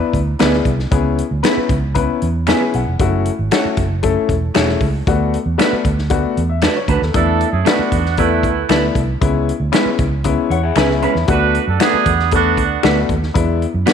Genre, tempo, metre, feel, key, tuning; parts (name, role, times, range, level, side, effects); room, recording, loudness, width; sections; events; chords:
uptempo 1960s-style soul; 116 BPM; 4/4; straight; E mixolydian; A4 = 440 Hz
warm upright piano; accompaniment; 0.0-13.9 s; G#3 to B5; -19 LUFS; left 8 dB
vintage muted fingered electric bass; bass; 0.1-13.8 s; E1 to F#2; -19 LUFS; right 2 dB
natural country drum kit; drums; 0.1-13.9 s; hi-hat, kick drum, snare drum; -20 LUFS; left 1 dB
electric guitar through a small old amp; stabs; 0.4-13.9 s; G#3 to C#5; -21 LUFS; right 10 dB
finger snaps; percussion; 0.4-13.9 s; -27 LUFS; left 8 dB
clear horn section; second line; 7.1-12.8 s; A3 to B4; -18 LUFS; right 12 dB; slapback echo
electric guitar through a small old amp; riff; 10.5-11.3 s; C#4 to C#5; -23 LUFS; left 10 dB; wide subtle chorus
light reverb, small room ambience; 1960s-style stereo with parts hard left and right; -14 LUFS; side -7 dB against mid
0.0-13.9 A section
upright piano fill 2.2-3.0, 10.3-11.3
0.0 E7; 0.9 C#m7; 3.0 F#m7; 5.1 D6; 7.1 E7sus4; 9.2 C#m7; 11.3 D6; 13.4 E7